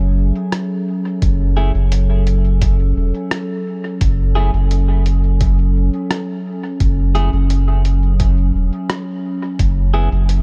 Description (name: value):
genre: ambient dub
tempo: 86 BPM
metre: 4/4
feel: straight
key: F# minor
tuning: A4 = 440 Hz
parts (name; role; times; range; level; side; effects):
- warbly tape-like pad; sustained chords; 0.0-10.4 s; F#3 to E5; -26 LUFS; equal; chorus, built-in reverb
- warm sub bass; bass; 0.0-10.4 s; E1 to F#1; -17 LUFS; equal; none
- lo-fi sampler-style drum kit; drums; 0.5-10.4 s; hi-hat, rim click; -28 LUFS; equal; small room reverb, dub echo
- electronic kick drum; drums; 1.2-9.7 s; none; -20 LUFS; equal; small room reverb
- clean electric guitar; stabs; 1.6-10.1 s; A3 to G#4; -30 LUFS; equal; spring reverb, dub echo
room: little or no reverb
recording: dark, warm production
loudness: -17 LUFS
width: mono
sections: 0.0-10.4 A section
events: none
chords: 0.0 F#m9; 9.6 C#m7